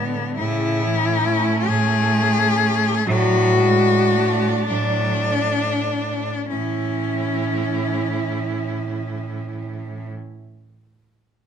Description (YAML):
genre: classical, lyrical piece for cello ensemble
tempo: 31-46 BPM (dotted quarters)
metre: 6/8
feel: rubato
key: A major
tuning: A4 = 440 Hz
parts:
  - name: warm cello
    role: melody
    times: 0.0-10.1 s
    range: B3 to G#4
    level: -21 LUFS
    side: left 5 dB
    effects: none
  - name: warm cello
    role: second line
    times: 0.0-10.1 s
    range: G#3 to E4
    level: -29 LUFS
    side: right 6 dB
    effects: none
  - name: rich cello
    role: accompaniment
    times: 0.0-10.1 s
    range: C#3 to A3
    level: -25 LUFS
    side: right 2 dB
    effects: none
  - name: clear cello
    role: bass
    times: 0.0-10.1 s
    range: A2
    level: -24 LUFS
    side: right 3 dB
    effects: none
room: moderate large studio reverb, RT60 1.3 s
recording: close, detailed microphones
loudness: -18 LUFS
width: side -8 dB against mid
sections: 0.0-6.5 A section; 6.5-10.1 B section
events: slowing down 0.0-6.5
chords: 0.4 A; 3.1 D/A; 6.5 A